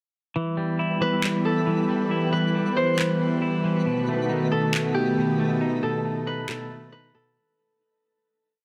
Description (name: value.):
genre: hip hop, atmospheric cloud-rap.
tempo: 137 BPM.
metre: 4/4.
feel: half-time.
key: E harmonic minor.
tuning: A4 = 440 Hz.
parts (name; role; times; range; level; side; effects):
warm analog pad; sustained chords; 0.5-7.3 s; D#3 to B4; -27 LUFS; equal; chorus.
twinkling granular texture; texture; 0.9-7.3 s; G3 to B4; -40 LUFS; equal; built-in reverb.
semi-hollow electric guitar; arpeggios; 0.4-7.4 s; B2 to E4; -31 LUFS; equal; low-pass filter, delay.
Celtic harp; melody; 1.0-8.6 s; G4 to C5; -30 LUFS; equal; low-pass filter, delay.
electronic handclaps; drums; 1.2-6.6 s; none; -33 LUFS; equal; none.
room: light reverb.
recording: dense, heavily limited modern master.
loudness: -24 LUFS.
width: mono.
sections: 0.4-7.4 breakdown.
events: fade-out 5.6-7.4.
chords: 0.4 Em; 3.9 B7.